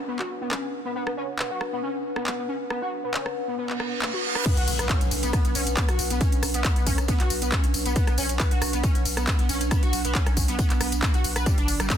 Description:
driving peak-time techno; 137 BPM; 4/4; straight; B minor; A4 = 436 Hz
downlifter, reverse cymbal and impact; sound effects; 0.0-1.0, 3.7-6.2 s; -33 LUFS; right 3 dB
warbly tape-like pad; texture; 0.0-12.0 s; D4 to F#5; -32 LUFS; equal; chorus, built-in reverb, sidechain pumping
overdriven synth lead; riff; 0.1-12.0 s; G3 to B4; -30 LUFS; equal; ensemble chorus, cassette tape, sidechain pumping, dub echo
techno drum kit; drums; 0.2-12.0 s; crash cymbal, handclaps, hi-hat, ride cymbal, rim click, tambourine; -29 LUFS; left 1 dB; sidechain pumping on hats, sidechain pumping on perc, soft clipping on snare, sidechain pumping on cymbals
electronic kick drum; drums; 4.5-12.0 s; -24 LUFS; equal
warm sub bass; bass; 4.6-11.9 s; G1 to B1; -29 LUFS; equal; overdrive, sidechain pumping, low-pass filter
digital ambience; dense, heavily limited modern master; -22 LUFS; side -10 dB against mid
0.0-4.5 A section; 4.5-12.0 B section
reverse cymbal 3.7-4.5; drop 4.5-12.0; impact 4.5-6.2
0.0 Bm; 11.5 Gm

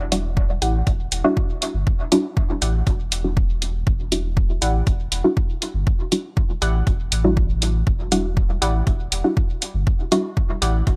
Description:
dub techno; 120 BPM; 4/4; straight; E minor; A4 = 439 Hz
warm sub bass; bass; 0.0-11.0 s; E1 to A1; -25 LUFS; equal; sidechain pumping
filtered dub chord stab; stabs; 0.1-10.3 s; G3 to F#4; -24 LUFS; equal; chorus, phaser, sidechain pumping, dub echo
electronic hi-hat; drums; 0.1-11.0 s; -26 LUFS; equal
electronic kick drum; drums; 0.4-11.0 s; -22 LUFS; equal
warbly dusty pluck; riff; 0.6-10.7 s; E4 to F#5; -30 LUFS; equal; chorus, phaser, sidechain pumping, dub echo
little or no reverb; -21 LUFS; mono
0.0-11.0 A section
filter sweep on synth stab 0.0-11.0
0.0 Em9

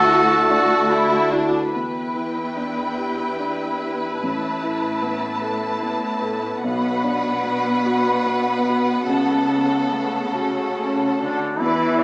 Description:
cinematic, emotional film score for orchestra; 49 BPM (dotted quarters); 6/8; rubato; E dorian; A4 = 438 Hz
warm symphonic violin section; melody; 0.0-12.0 s; D5 to A5; -30 LUFS; equal
clear oboe; second line; 0.0-1.3 s; A4; -17 LUFS; equal
rich studio violin section; second line; 0.0-11.4 s; D4 to B4; -24 LUFS; equal
dark baby grand piano; accompaniment; 0.0-12.0 s; A1 to A4; -24 LUFS; equal
warm studio viola section; accompaniment; 0.0-12.0 s; B3 to B4; -27 LUFS; equal
mellow French horn section; sustained chords; 0.0-1.3 s; A3; -31 LUFS; equal
rich studio cello section; bass; 0.0-12.0 s; E2 to A3; -26 LUFS; equal
warm studio double bass section; bass; 0.0-1.5, 11.6-12.0 s; D2 to E2; -30 LUFS; equal
warm duduk; melody; 11.2-12.0 s; D4 to E4; -21 LUFS; equal
wet scoring stage reverb, RT60 1.5 s; small speaker sound; -18 LUFS; side -26 dB against mid
0.0-1.8 A section; 1.8-11.6 B section
0.0 Dadd9; 1.8 Em7; 4.2 Asus2; 6.6 Bm; 9.1 F#m/C#

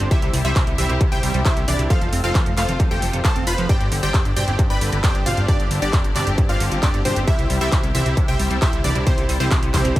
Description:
uplifting trance; 134 BPM; 4/4; straight; C major; A4 = 440 Hz
supersaw stab; melody; 0.0-10.0 s; C4 to B5; -25 LUFS; right 1 dB; sidechain pumping, digital delay
analog pluck; second line; 0.0-10.0 s; C5 to B5; -29 LUFS; equal; chorus, sidechain pumping, digital delay
rich studio string section; sustained chords; 0.0-10.0 s; C3 to G4; -30 LUFS; left 2 dB; sidechain pumping
liquid acid bass; arpeggios; 0.0-10.0 s; F2 to F4; -28 LUFS; right 1 dB; analog chorus, sidechain pumping, digital delay
fat analog bass; bass; 0.0-9.9 s; F1 to C2; -23 LUFS; equal; sidechain pumping
techno drum kit; drums; 0.0-10.0 s; handclaps, hi-hat; -27 LUFS; equal; overdrive, sidechain pumping on hats, sidechain pumping on cymbals
electronic kick drum; drums; 0.1-10.0 s; -19 LUFS; equal; distortion, overdrive
little or no reverb; -16 LUFS; side -16 dB against mid
0.0-10.0 A section
0.1 C; 1.9 F; 3.7 Gsus4; 7.3 C

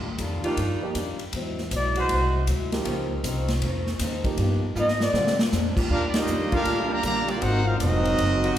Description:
jazz, big band swing; 158 BPM; 4/4; swing 65% on 8ths; A4 = 437 Hz
picked old ladder-braced acoustic guitar; accompaniment; 0.0-8.5 s; G2 to F4; -32 LUFS; left 3 dB
upright bass; bass; 0.0-8.6 s; F1 to Bb2; -27 LUFS; equal
swinging big-band drum kit; drums; 0.2-8.6 s; crash cymbal, hi-hat, kick drum, ride cymbal, snare drum; -30 LUFS; equal
warm grand piano; accompaniment; 0.4-5.4 s; D3 to G4; -32 LUFS; right 3 dB
warm saxophone section; sustained chords; 0.4-8.6 s; C3 to Gb4; -32 LUFS; equal
dark trumpet; melody; 1.8-2.3, 4.8-5.4 s; C5 to D#5; -26 LUFS; equal
bright trumpet section; melody; 5.9-8.6 s; Bb3 to Bb5; -26 LUFS; equal
bright trombone section; second line; 5.9-8.6 s; D3 to Gb4; -26 LUFS; right 3 dB
wet recital hall reverb, RT60 1.5 s; recorded in a church or concert hall; -22 LUFS; side -11 dB against mid
0.0-5.9 A section; 5.9-8.6 B section
trumpet solo 0.0-5.9; drum fill 4.8-5.5; band accent 6.1
0.0 Ebmaj9; 1.3 Ab7alt; 2.9 Dbmaj9; 4.4 G7alt; 5.1 Bb7; 5.9 Ebmaj9; 7.4 Ab13

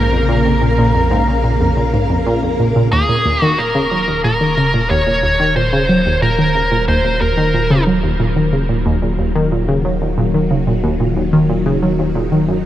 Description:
ambient, sequencer-driven space music; 91 BPM; 4/4; straight; Eb dorian; A4 = 438 Hz
nasal lead guitar with a parked wah; melody; 0.0-7.8 s; Ab4 to Db5; -18 LUFS; equal; overdrive, tape echo
phased string machine; sustained chords; 0.0-12.7 s; C3 to F5; -21 LUFS; left 1 dB; ensemble chorus, phaser
analog pluck; riff; 0.0-12.6 s; Eb2 to Gb3; -16 LUFS; equal; chorus, tape echo
warm sub bass; bass; 0.0-12.7 s; Eb1 to Bb1; -21 LUFS; equal
moderate huge ambient reverb, RT60 8.9 s; -13 LUFS; side -12 dB against mid
0.0-2.9 A section; 2.9-12.7 B section
fade-in on string machine 2.9-12.7
0.0 Bbmadd9; 2.9 Ebmadd9

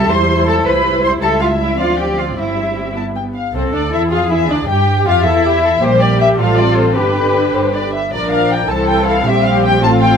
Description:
quick classical-period movement for string orchestra; 105 BPM (dotted quarters); 6/8; straight; C major; A4 = 444 Hz
muted symphonic violin section; melody; 0.0-10.2 s; B4 to A5; -17 LUFS; left 3 dB
muted studio violin section; second line; 0.0-10.2 s; C4 to C6; -19 LUFS; left 4 dB
muted symphonic viola section; accompaniment; 0.0-10.2 s; D3 to G4; -19 LUFS; equal
muted studio cello section; bass; 0.0-10.2 s; E4 to C5; -20 LUFS; right 2 dB
muted symphonic double bass section; bass; 0.0-10.2 s; G1 to G2; -19 LUFS; right 3 dB
light reverb; close, detailed microphones; -12 LUFS; side -7 dB against mid
0.0-3.5 A section; 3.5-10.2 B section
0.1 C/E; 0.7 C; 1.2 A7/C#; 1.8 Dm7; 2.4 C/G; 3.0 G; 3.5 C; 4.1 E7b9; 4.7 Fmaj9; 5.8 Bb69; 6.4 F/A; 7.0 G; 8.1 Bb6; 8.7 C; 9.3 C5/Bb

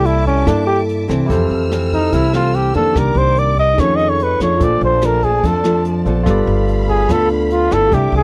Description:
bossa nova; 145 BPM; 4/4; straight; C major; A4 = 440 Hz
clear flugelhorn; melody; 0.0-8.2 s; Db4 to Eb5; -18 LUFS; equal
barky tine electric piano; accompaniment; 0.0-8.2 s; Eb4 to E5; -26 LUFS; equal
nylon-string guitar; accompaniment; 0.0-8.2 s; F2 to A4; -22 LUFS; equal
warm symphonic string section; sustained chords; 0.0-8.2 s; A3 to F6; -31 LUFS; equal
upright bass; bass; 0.0-8.2 s; G1 to G2; -21 LUFS; equal
jazz brush drum kit; drums; 0.1-8.2 s; hi-hat, kick drum, rim click; -24 LUFS; equal
little or no reverb; dry, close 1970s-style studio recording; -15 LUFS; mono
0.0-8.2 A section
flugelhorn solo 0.0-8.2
0.0 C13; 1.3 Fmaj7; 2.9 Cm9; 3.8 F7alt; 4.6 Bbmaj7; 6.3 G9

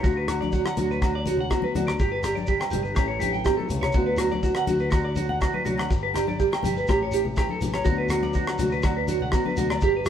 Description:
highlife guitar band; 123 BPM; 4/4; straight; D major; A4 = 441 Hz
nylon-string guitar; accompaniment; 0.0-10.1 s; G2 to G4; -30 LUFS; left 4 dB
clean electric guitar; arpeggios; 0.0-10.1 s; F#4 to G5; -26 LUFS; right 4 dB; phaser
fingered electric bass; bass; 0.0-10.1 s; G1 to D2; -31 LUFS; equal
damped 70s drum kit; drums; 0.0-10.1 s; hi-hat, kick drum, rim click; -26 LUFS; equal
shekere; percussion; 0.0-10.1 s; -38 LUFS; left 1 dB
agogo bells; percussion; 0.3-9.8 s; -34 LUFS; left 5 dB
congas; percussion; 0.4-9.7 s; -33 LUFS; left 3 dB
moderate stone room reverb, RT60 1.2 s; band playing live in one room; -22 LUFS; side -9 dB against mid
0.0-10.1 A section
drum fill 3.3-3.9
0.0 D6; 2.0 G; 3.0 A7; 3.9 D6; 5.9 G; 6.9 A7; 7.9 D6

